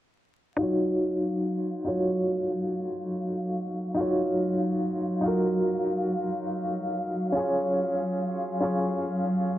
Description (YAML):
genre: trip hop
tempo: 71 BPM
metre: 4/4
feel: straight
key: Eb minor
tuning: A4 = 440 Hz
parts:
  - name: bright upright piano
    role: accompaniment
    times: 0.6-9.6 s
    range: Db4 to Db5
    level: -27 LUFS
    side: equal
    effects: tremolo, vintage 12-bit sampler grit, low-pass filter, tape echo
  - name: warm studio string section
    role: sustained chords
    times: 0.6-9.6 s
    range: Gb3 to F5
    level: -30 LUFS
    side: equal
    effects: low-pass filter
room: moderate plate reverb, RT60 2.6 s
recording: dark, warm production, vinyl crackle, low-pass filter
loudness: -25 LUFS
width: side -13 dB against mid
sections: 0.6-9.6 A section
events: filter sweep on string section 0.6-9.6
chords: 0.6 Ebm9; 7.3 Db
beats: | 0.58 1.43 2.27 3.12 | 3.96 4.81 5.65 6.50 | 7.34 8.19 9.03